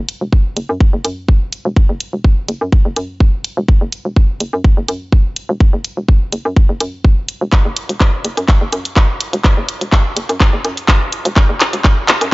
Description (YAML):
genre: minimal techno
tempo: 125 BPM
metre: 4/4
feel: swing 53% on 16ths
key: unclear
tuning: A4 = 437 Hz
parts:
  - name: hollow knocking FM bass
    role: bass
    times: 0.0-12.3 s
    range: E1 to F#2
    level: -19 LUFS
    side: equal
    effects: sidechain pumping, high-pass filter
  - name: garage drum kit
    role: drums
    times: 0.1-12.3 s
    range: handclaps, hi-hat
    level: -16 LUFS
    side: equal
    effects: studio reverb
  - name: electronic kick drum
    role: drums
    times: 0.3-11.9 s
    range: none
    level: -10 LUFS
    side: equal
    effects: studio reverb
room: digital ambience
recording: dry, gritty hardware recording, transformer saturation, cassette tape, nothing above 7.6 kHz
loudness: -12 LUFS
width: side -22 dB against mid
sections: 0.0-12.3 A section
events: build-up 0.0-12.3; drum fill 7.5-12.3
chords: none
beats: 0.33 0.81 1.28 | 1.76 2.25 2.73 3.21 | 3.69 4.17 4.64 5.12 | 5.61 6.08 6.57 7.04 | 7.53 8.01 8.48 8.96 | 9.45 9.93 10.40 10.88 | 11.37 11.85